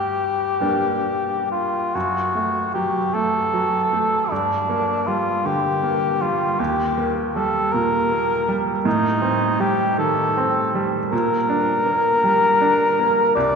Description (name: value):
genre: classical, romantic duo for cor anglais and grand piano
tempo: 53 BPM (dotted quarters)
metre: 6/8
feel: uneven beats, rubato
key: G minor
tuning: A4 = 440 Hz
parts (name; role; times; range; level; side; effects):
- mellow cor anglais; melody; 0.0-13.6 s; D4 to D5; -19 LUFS; left 1 dB; none
- bright baby grand piano; accompaniment; 0.0-13.6 s; C2 to D4; -23 LUFS; right 2 dB; none
room: wet cathedral reverb, RT60 4.7 s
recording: recorded in a church or concert hall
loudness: -18 LUFS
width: side -5 dB against mid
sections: 0.0-1.9 A section; 1.9-13.6 B section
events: none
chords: 0.0 Gm; 1.9 F#m; 4.3 Gm; 6.6 Eb; 8.9 Am7b5; 11.1 Gm/Bb